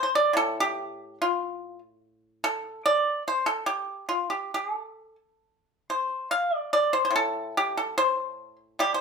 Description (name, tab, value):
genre	chinese traditional, Chinese solo plucked strings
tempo	68-74 BPM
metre	2/4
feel	rubato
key	unclear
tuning	A4 = 443 Hz
part	pipa	solo	0.0-9.0 s	A2 to F5	-24 LUFS	equal	none
room	moderate studio reverb, RT60 0.7 s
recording	band playing live in one room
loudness	-24 LUFS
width	side -5 dB against mid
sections	0.0-9.0 A section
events	none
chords	none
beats	| 0.35 1.20 | 2.02 2.83 | 3.65 4.52 | 5.40 6.28 | 7.13 7.97 | 8.81